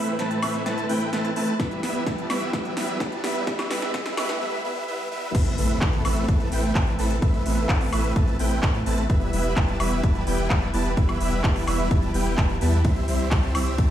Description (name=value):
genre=EDM, festival progressive house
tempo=128 BPM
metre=4/4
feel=straight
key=A minor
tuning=A4 = 440 Hz
part: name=lush unison pad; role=sustained chords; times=0.0-13.9 s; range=E2 to B4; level=-33 LUFS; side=right 1 dB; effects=chorus, sidechain pumping
part: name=dense compressed supersaw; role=riff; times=0.0-13.9 s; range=G3 to A5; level=-26 LUFS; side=equal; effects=sidechain pumping, low-pass filter, ping-pong delay
part: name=riser and impact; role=sound effects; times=0.4-7.2 s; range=none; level=-34 LUFS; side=equal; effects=none
part: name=big-room dance drum kit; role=drums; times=0.1-13.9 s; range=crash cymbal, handclaps, hi-hat, ride cymbal, snare drum, woodblock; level=-30 LUFS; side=equal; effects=overdrive, studio reverb
part: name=electronic kick drum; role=drums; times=1.6-13.9 s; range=none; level=-22 LUFS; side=equal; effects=overdrive, studio reverb
part: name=saturated sub bass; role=bass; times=5.3-13.9 s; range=E1 to A2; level=-26 LUFS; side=equal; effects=sidechain pumping
room=light reverb, digital ambience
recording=played on a big sound system in a bare room, stone room reverb, high-pass filter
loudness=-21 LUFS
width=side -11 dB against mid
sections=0.0-5.3 A section; 5.3-13.9 B section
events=build-up 0.0-5.3; drum fill 0.0-4.4; filter sweep on supersaw synth 0.0-5.3; filter sweep 0.0-5.3; riser 0.4-4.4; break 4.4-5.3; drop 5.3-13.9; impact 5.3-7.2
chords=0.0 Amadd9; 1.6 Em; 5.3 Amadd9; 9.1 Em; 12.8 C